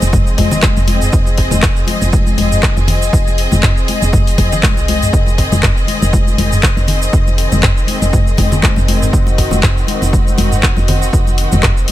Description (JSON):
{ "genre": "afro house", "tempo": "120 BPM", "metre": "4/4", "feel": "swing 56% on 16ths", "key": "unclear", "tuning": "A4 = 440 Hz", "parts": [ { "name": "rich studio string section", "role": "sustained chords", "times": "0.0-11.9 s", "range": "Eb3 to Eb5", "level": "-19 LUFS", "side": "left 1 dB", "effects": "sidechain pumping" }, { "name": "woody FM bass", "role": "bass", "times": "0.0-11.8 s", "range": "F1 to C2", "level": "-16 LUFS", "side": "equal", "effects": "sidechain pumping" }, { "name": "house drum kit", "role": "drums", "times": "0.0-11.9 s", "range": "cabasa, handclaps, hi-hat, rim click, toms", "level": "-18 LUFS", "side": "equal", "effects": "none" }, { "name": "congas", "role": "percussion", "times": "0.0-11.9 s", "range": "none", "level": "-20 LUFS", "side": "left 4 dB", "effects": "none" }, { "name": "electronic kick drum", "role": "drums", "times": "0.1-11.7 s", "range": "none", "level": "-14 LUFS", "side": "equal", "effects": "none" } ], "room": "little or no reverb", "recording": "none", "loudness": "-10 LUFS", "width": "side -14 dB against mid", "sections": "0.0-11.9 A section", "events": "none", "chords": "0.0 Fm7; 5.1 Ab/F" }